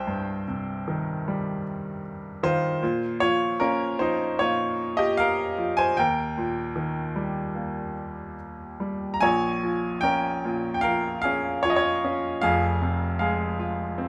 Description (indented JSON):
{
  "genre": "classical, lyrical solo piano",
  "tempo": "76 BPM",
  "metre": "4/4",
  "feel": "rubato",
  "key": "unclear",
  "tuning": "A4 = 440 Hz",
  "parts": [
    { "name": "bright baby grand piano", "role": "solo", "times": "0.0-14.1 s", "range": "F1 to Bb5", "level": "-26 LUFS", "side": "equal", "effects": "none" }
  ],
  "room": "moderate studio reverb, RT60 0.9 s",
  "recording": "none",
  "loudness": "-26 LUFS",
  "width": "mono",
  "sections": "0.0-9.2 A section; 9.2-14.1 B section",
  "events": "none",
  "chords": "0.0 Cm; 2.8 Bbmadd9; 6.0 Eb; 9.2 Bbm; 12.4 Fm"
}